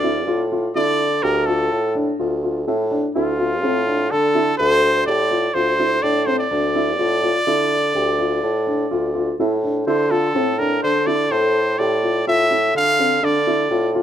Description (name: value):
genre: progressive instrumental, band music in an uneven meter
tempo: 125 BPM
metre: 7/4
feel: straight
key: D minor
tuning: A4 = 440 Hz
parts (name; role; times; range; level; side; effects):
- bright trumpet; melody; 0.0-13.9 s; F4 to F5; -20 LUFS; equal; none
- dark baby grand piano; arpeggios; 0.0-14.0 s; C4 to A4; -23 LUFS; left 1 dB; none
- mellow bassoon; bass; 0.0-14.0 s; D2 to D3; -21 LUFS; right 1 dB; none
room: light reverb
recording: minimal, uncompressed stereo recording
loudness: -16 LUFS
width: side -10 dB against mid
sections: 0.0-9.9 A section; 9.9-14.0 B section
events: none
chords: 0.0 Dmadd9; 9.9 Dm7